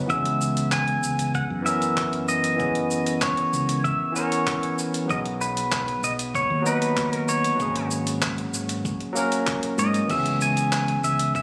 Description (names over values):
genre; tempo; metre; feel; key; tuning
sunset chillout; 96 BPM; 4/4; straight; C# dorian; A4 = 438 Hz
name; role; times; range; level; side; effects
barky tine electric piano; accompaniment; 0.0-11.4 s; E3 to B4; -29 LUFS; equal; low-pass filter, delay
pedal steel guitar; melody; 0.1-11.4 s; B4 to G#5; -28 LUFS; equal; tape echo
mellow fretless electric bass; bass; 0.1-11.4 s; G#1 to G#2; -31 LUFS; equal; none
dusty soul sampler-style drum kit; drums; 0.1-11.4 s; crash cymbal, handclaps, hi-hat, shaker; -32 LUFS; equal; small room ambience
electronic kick drum; drums; 0.1-11.4 s; none; -37 LUFS; equal; small room ambience
room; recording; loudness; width
light reverb, digital ambience; recorded on a phone in the room, club reverb, compression; -24 LUFS; mono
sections
0.0-10.1 A section; 10.1-11.4 B section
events
filter sweep on tine electric piano 0.0-10.1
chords
0.1 C#m7; 5.1 B6; 7.6 G#9sus4; 10.1 C#m7